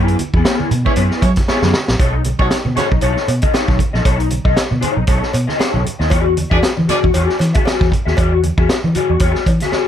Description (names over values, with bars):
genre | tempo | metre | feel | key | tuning
funk | 116 BPM | 4/4 | swing 56% on 16ths | B mixolydian | A4 = 440 Hz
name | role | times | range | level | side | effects
electric guitar through a small old amp | accompaniment | 0.0-9.9 s | B3 to E5 | -19 LUFS | left 5 dB | ensemble chorus
vintage muted fingered electric bass | bass | 0.0-9.8 s | A#1 to F#3 | -17 LUFS | equal | none
vintage drum kit | drums | 0.1-9.9 s | hi-hat, kick drum, snare drum | -17 LUFS | equal | none
congas | percussion | 0.2-9.7 s | none | -27 LUFS | right 7 dB | none
cowbell | percussion | 0.5-9.9 s | none | -28 LUFS | right 4 dB | none
warm horn section | second line | 0.9-2.9, 6.5-7.0 s | G#3 to D5 | -21 LUFS | right 2 dB | none
room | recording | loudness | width
light reverb | none | -13 LUFS | side -10 dB against mid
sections
0.0-2.0 A section; 2.0-9.9 B section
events
band accent 0.0-2.0; drum fill 1.5-2.0, 9.7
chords
0.0 F#9sus4; 2.0 B9; 6.1 E9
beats
0.46 0.97 1.48 | 2.00 2.51 3.03 3.54 | 4.06 4.57 5.09 5.60 | 6.12 6.63 7.15 7.66 | 8.18 8.69 9.21 9.72